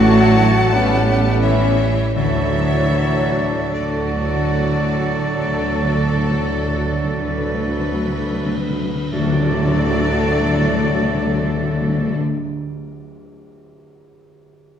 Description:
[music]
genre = classical, slow romantic movement for symphony orchestra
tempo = 30-48 BPM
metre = 4/4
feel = rubato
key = D major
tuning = A4 = 441 Hz
[part]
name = rich symphonic violin section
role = melody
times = 0.0-12.2 s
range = D5 to A5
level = -30 LUFS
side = left 3 dB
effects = none
[part]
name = bright clarinet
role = second line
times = 0.0-12.2 s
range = F#4 to G4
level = -31 LUFS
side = equal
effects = none
[part]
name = clear oboe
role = second line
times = 0.0-12.2 s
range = A4 to C#5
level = -28 LUFS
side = right 2 dB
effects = none
[part]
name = concert flute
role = second line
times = 0.0-12.2 s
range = A4 to F#5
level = -28 LUFS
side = left 1 dB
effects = none
[part]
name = warm symphonic violin section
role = second line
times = 0.0-12.2 s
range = C#4 to B4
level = -31 LUFS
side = left 2 dB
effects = none
[part]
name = mellow bassoon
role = accompaniment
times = 0.0-12.2 s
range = A3 to F#4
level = -27 LUFS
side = equal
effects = none
[part]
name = rich symphonic viola section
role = accompaniment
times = 0.0-12.2 s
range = D3 to B3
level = -30 LUFS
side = left 1 dB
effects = none
[part]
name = clear trombone section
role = sustained chords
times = 0.0-12.2 s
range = A2 to G3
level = -28 LUFS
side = right 2 dB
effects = none
[part]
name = warm French horn section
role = sustained chords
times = 0.0-12.2 s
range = A3 to D4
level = -26 LUFS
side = left 5 dB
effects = none
[part]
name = concert harp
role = arpeggios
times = 0.0-13.0 s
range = A2 to A5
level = -29 LUFS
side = left 3 dB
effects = none
[part]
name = mellow tuba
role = bass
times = 0.0-12.2 s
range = A1 to D2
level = -24 LUFS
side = right 1 dB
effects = none
[part]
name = rich symphonic cello section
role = bass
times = 0.0-12.2 s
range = D3 to A3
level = -24 LUFS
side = right 2 dB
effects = none
[part]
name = rich symphonic double bass section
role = bass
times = 0.0-12.2 s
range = A1 to D2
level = -24 LUFS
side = right 2 dB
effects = none
[part]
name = cymbal swell and tam-tam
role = percussion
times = 2.2-12.2 s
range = none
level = -32 LUFS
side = left 1 dB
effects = none
[part]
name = timpani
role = percussion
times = 2.2-12.2 s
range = D3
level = -24 LUFS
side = left 1 dB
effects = none
[sound]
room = wet recital hall reverb, RT60 1.5 s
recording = recorded in a church or concert hall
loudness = -16 LUFS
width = side -8 dB against mid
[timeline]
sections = 0.0-9.1 A section; 9.1-14.8 B section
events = slowing down 0.0-9.1; timpani fill 2.2-9.1; band accent 9.1-11.0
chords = 0.0 D/A; 0.7 A9; 2.2 D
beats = 0.73 | 2.15 3.73 5.39 7.20 | 9.13 11.02 12.90

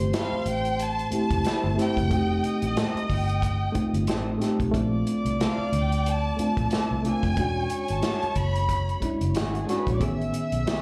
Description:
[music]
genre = lush 1970s-style soul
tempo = 91 BPM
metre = 4/4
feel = swing 58% on 16ths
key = unclear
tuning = A4 = 436 Hz
[part]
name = warm studio violin section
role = second line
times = 0.0-10.8 s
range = E4 to E6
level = -37 LUFS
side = equal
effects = slapback echo
[part]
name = reed electric piano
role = accompaniment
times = 0.0-10.8 s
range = D#3 to G#4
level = -30 LUFS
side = equal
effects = fast tremolo, slapback echo
[part]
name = vintage muted fingered electric bass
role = bass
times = 0.0-10.6 s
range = E1 to D2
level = -30 LUFS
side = equal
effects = none
[part]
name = electric guitar through a small old amp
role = riff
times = 0.1-10.8 s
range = F3 to C#5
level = -37 LUFS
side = equal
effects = subtle chorus, slapback echo
[part]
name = warm soul drum kit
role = drums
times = 0.1-10.8 s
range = hi-hat, kick drum, snare drum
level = -32 LUFS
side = equal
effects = none
[part]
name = rich studio violin section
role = melody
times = 0.2-9.0 s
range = Eb5 to B5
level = -33 LUFS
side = equal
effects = slapback echo
[sound]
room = light reverb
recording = live gig heard through the venue's PA, club reverb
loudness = -25 LUFS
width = mono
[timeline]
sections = 0.0-10.8 A section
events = none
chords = 0.0 Fmaj7; 2.1 F9; 4.7 Bbmaj7; 7.4 E13; 10.0 Amaj9#11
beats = 0.13 0.79 1.45 | 2.10 2.76 3.42 4.08 | 4.74 5.40 6.05 6.71 | 7.37 8.03 8.69 9.35 | 10.01 10.66

